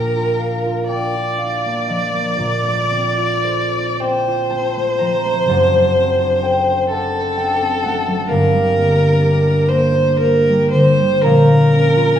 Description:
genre	classical, romantic duo for violin and harp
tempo	35-44 BPM (dotted quarters)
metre	6/8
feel	rubato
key	unclear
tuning	A4 = 440 Hz
part	warm violin	melody	0.0-12.2 s	A4 to D5	-16 LUFS	equal	none
part	concert harp	accompaniment	0.0-12.2 s	F#1 to Bb5	-17 LUFS	equal	none
room	wet recital hall reverb, RT60 1.5 s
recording	heard from further back in the room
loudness	-14 LUFS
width	side -10 dB against mid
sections	0.0-12.2 A section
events	none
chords	0.0 Bb; 2.4 F9/Bb; 5.5 D7/F#; 8.3 Gm7; 11.2 Bbm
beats	0.89 | 2.38 4.02 | 5.49 6.93 | 8.30 9.70 | 11.24

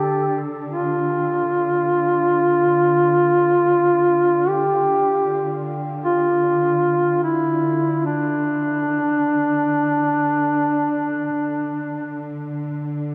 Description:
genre	caucasian folk, Caucasian lament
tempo	free time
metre	none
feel	none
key	D minor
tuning	A4 = 440 Hz
part	mellow duduk	melody	0.0-12.4 s	D4 to G4	-20 LUFS	equal	none
part	dark studio cello section	drone	0.0-13.1 s	D3	-30 LUFS	equal	none
room	wet cathedral reverb, RT60 7.1 s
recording	dark, warm production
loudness	-20 LUFS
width	mono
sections	0.0-13.1 A section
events	none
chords	none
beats	free time

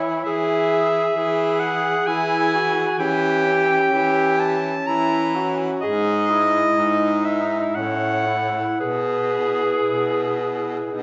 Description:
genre	classical, lyrical piece for single-reed quartet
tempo	55-67 BPM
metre	3/4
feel	rubato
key	E major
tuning	A4 = 440 Hz
part	clear clarinet	melody	0.0-11.0 s	B4 to Bb5	-24 LUFS	equal	none
part	clear alto saxophone	second line	0.0-11.0 s	C#4 to C#5	-31 LUFS	equal	none
part	mellow tenor saxophone	accompaniment	0.0-11.0 s	C#4 to G#4	-25 LUFS	equal	none
part	clear baritone saxophone	bass	0.0-11.0 s	G#2 to E3	-28 LUFS	equal	none
room	wet recital hall reverb, RT60 1.6 s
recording	heard from further back in the room, vinyl crackle, nothing above 7.8 kHz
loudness	-20 LUFS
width	mono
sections	0.0-11.0 A section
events	none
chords	0.3 E; 3.0 Edim7; 5.8 E/G#; 7.8 F#m7/A; 8.8 E/B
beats	| 0.25 1.15 2.07 | 3.00 3.93 4.88 | 5.82 6.77 7.76 | 8.80 9.88 10.93

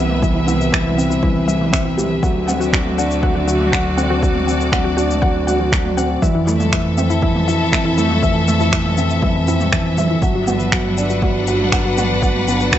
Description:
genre	piano and strings electronica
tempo	120 BPM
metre	4/4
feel	straight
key	G major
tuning	A4 = 440 Hz
part	bright studio string section	sustained chords	0.0-12.8 s	C3 to F#5	-23 LUFS	left 2 dB	none
part	warbly dusty pluck	arpeggios	0.0-12.8 s	E4 to F#5	-25 LUFS	left 2 dB	chorus, sidechain pumping, tape echo
part	felt-muted upright piano	riff	0.0-12.8 s	E3 to G4	-19 LUFS	right 1 dB	tape echo
part	clear chamber double bass section	bass	0.0-12.8 s	G1 to F2	-22 LUFS	left 1 dB	sidechain pumping
part	minimal click drum kit	drums	0.1-12.8 s	finger snaps, shaker, toms	-23 LUFS	right 1 dB	overdrive
part	electronic kick drum	drums	0.2-12.8 s	none	-20 LUFS	equal	none
room	light reverb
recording	nothing above 7.9 kHz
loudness	-14 LUFS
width	side -11 dB against mid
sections	0.0-12.8 A section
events	none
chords	0.0 Cmaj7; 2.2 D7; 6.2 Fmaj7; 10.2 Gmaj7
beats	| 0.23 0.73 1.23 1.73 | 2.23 2.73 3.23 3.73 | 4.23 4.73 5.23 5.73 | 6.23 6.73 7.23 7.73 | 8.23 8.73 9.23 9.73 | 10.23 10.73 11.23 11.73 | 12.23 12.73

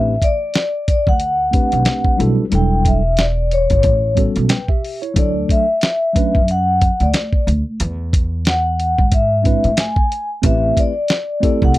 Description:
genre	hip hop, jazz-hop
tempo	91 BPM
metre	4/4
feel	swing 58% on 16ths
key	unclear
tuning	A4 = 440 Hz
part	vibraphone with soft mallets	melody	0.0-11.8 s	C#5 to G#5	-18 LUFS	left 2 dB	none
part	mellow tine electric piano	accompaniment	0.0-11.8 s	F#3 to G5	-20 LUFS	right 1 dB	medium stereo tremolo
part	upright bass	bass	0.0-11.8 s	E1 to A2	-19 LUFS	equal	none
part	lo-fi sampler-style drum kit	drums	0.2-11.8 s	hi-hat, kick drum, snare drum	-16 LUFS	equal	none
room	little or no reverb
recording	dry, close 1970s-style studio recording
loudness	-14 LUFS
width	side -16 dB against mid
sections	0.0-11.8 A section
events	none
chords	0.0 Am11; 2.5 Em11; 3.8 A13; 5.2 Dmaj7; 7.8 E; 10.4 Am9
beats	0.54 1.20 1.86 | 2.52 3.18 3.84 4.50 | 5.16 5.82 6.48 7.14 | 7.80 8.46 9.12 9.78 | 10.43 11.09 11.75

